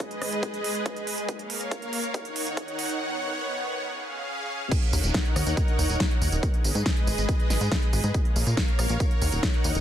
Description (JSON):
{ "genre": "uplifting trance", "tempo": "140 BPM", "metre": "4/4", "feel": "straight", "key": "Eb minor", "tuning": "A4 = 440 Hz", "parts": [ { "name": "supersaw pad", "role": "sustained chords", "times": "0.0-9.8 s", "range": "Db3 to Gb5", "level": "-30 LUFS", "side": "equal", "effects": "sidechain pumping" }, { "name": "big-room dance drum kit", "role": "drums", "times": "0.0-9.8 s", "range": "crash cymbal, hi-hat, rim click, snare drum, tambourine", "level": "-30 LUFS", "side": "right 1 dB", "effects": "small room ambience" }, { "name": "electronic kick drum", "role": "drums", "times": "0.0-9.5 s", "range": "none", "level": "-26 LUFS", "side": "equal", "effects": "high-pass filter on kick, small room ambience" }, { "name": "plucky analog bass", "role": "bass", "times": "4.9-9.8 s", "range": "Eb1 to Bb2", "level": "-26 LUFS", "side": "equal", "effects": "sidechain pumping" } ], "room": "digital ambience", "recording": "dense, heavily limited modern master, high-pass filter", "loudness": "-24 LUFS", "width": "side -11 dB against mid", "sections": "0.0-4.7 A section; 4.7-9.8 B section", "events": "build-up 0.0-4.7; drum fill 1.3-3.0; drop 4.7-9.8", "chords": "0.0 Abm; 1.3 Bbm; 2.1 Ebm7; 3.0 Badd9/D#; 3.9 Db; 4.7 Ebm7; 6.4 Abm; 8.1 Bbm; 9.0 Ebm7", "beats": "0.00 0.43 0.86 | 1.29 1.72 2.15 2.57 | 3.00 3.43 3.86 4.29 | 4.72 5.14 5.57 6.00 | 6.43 6.86 7.29 7.72 | 8.14 8.57 9.00 9.43" }